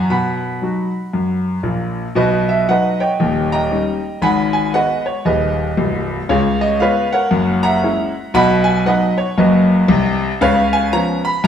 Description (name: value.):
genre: jazz, stride piano.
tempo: 116 BPM.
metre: 4/4.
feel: swing 61% on 8ths.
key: B major.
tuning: A4 = 439 Hz.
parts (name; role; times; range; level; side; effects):
clear grand piano; solo; 0.0-11.5 s; C1 to B5; -14 LUFS; equal; none.
room: wet stone room reverb, RT60 1.3 s.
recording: band playing live in one room.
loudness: -14 LUFS.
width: side -8 dB against mid.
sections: 0.0-2.2 A section; 2.2-11.5 B section.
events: none.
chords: 0.1 B; 3.2 D#7; 4.2 G#m7; 6.3 C#7; 7.3 F#9; 8.3 B; 10.4 C#7.